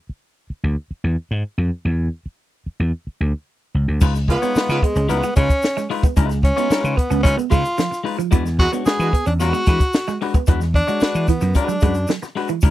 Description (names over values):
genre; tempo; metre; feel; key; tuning
funk; 112 BPM; 4/4; straight; unclear; A4 = 440 Hz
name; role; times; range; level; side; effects
vintage slap bass; bass; 0.1-12.7 s; Db2 to E3; -20 LUFS; equal; none
clean electric guitar; accompaniment; 4.0-12.7 s; Ab3 to Db5; -25 LUFS; left 6 dB; none
clean electric guitar; riff; 4.0-12.7 s; E3 to Db4; -25 LUFS; right 9 dB; phaser
compact cocktail drum kit; drums; 4.0-12.7 s; crash cymbal, hi-hat, kick drum, snare drum; -17 LUFS; equal; none
tube shaker; percussion; 4.0-12.7 s; none; -40 LUFS; left 3 dB; none
bright tenor saxophone; melody; 4.3-12.1 s; Ab3 to G#4; -21 LUFS; equal; none
warm horn section; second line; 4.3-4.8, 8.6-9.1 s; G#3 to B4; -24 LUFS; right 3 dB; none
room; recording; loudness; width
little or no reverb; dry, close 1970s-style studio recording; -17 LUFS; side -14 dB against mid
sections
0.0-4.0 A section; 4.0-12.7 B section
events
none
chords
0.0 E7(no3); 4.0 Db9; 8.3 E9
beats
0.23 0.78 1.32 | 1.86 2.40 2.94 3.48 | 4.02 4.56 5.09 5.63 | 6.17 6.71 7.25 7.79 | 8.32 8.86 9.40 9.94 | 10.47 11.01 11.55 12.09 | 12.63